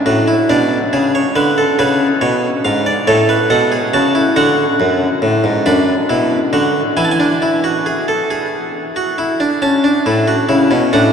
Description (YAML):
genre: classical, baroque-style 3-part fugue for harpsichord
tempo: 46 BPM (dotted quarters)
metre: 6/8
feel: straight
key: A major from 4.4 s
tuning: A4 = 439 Hz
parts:
  - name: harpsichord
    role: solo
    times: 0.0-11.1 s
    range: F#2 to B5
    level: -12 LUFS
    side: equal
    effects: none
room: wet cathedral reverb, RT60 6.9 s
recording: dark, warm production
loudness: -12 LUFS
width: side -7 dB against mid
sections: 0.0-9.6 A section; 9.6-11.1 B section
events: none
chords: 0.5 G#dim/B; 1.8 C#7; 3.1 F#m/A; 4.4 D; 5.7 Bm/F#; 7.0 E; 9.6 A